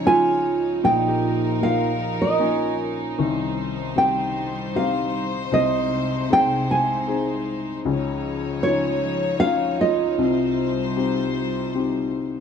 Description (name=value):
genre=acoustic folk-pop ballad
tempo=77 BPM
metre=3/4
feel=straight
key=C phrygian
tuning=A4 = 440 Hz
part: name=nylon-string guitar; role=melody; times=0.0-11.7 s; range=Db5 to Ab5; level=-22 LUFS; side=right 2 dB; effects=plate reverb
part: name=warm upright piano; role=accompaniment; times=0.0-12.4 s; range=Bb1 to Ab4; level=-24 LUFS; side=left 5 dB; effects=none
part: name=warm chamber string section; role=sustained chords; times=0.0-12.4 s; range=C3 to Db5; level=-28 LUFS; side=left 1 dB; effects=none
part: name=concert harp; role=arpeggios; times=0.0-5.3, 9.8-12.3 s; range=Db4 to G4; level=-26 LUFS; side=right 8 dB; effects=none
room=moderate studio reverb, RT60 0.5 s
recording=dark, warm production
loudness=-20 LUFS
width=side -7 dB against mid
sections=0.0-12.4 A section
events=none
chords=0.0 Dbadd9; 0.8 Bbsus4; 3.2 Cm; 5.5 Ab/C; 7.9 Dbadd9; 10.2 Cm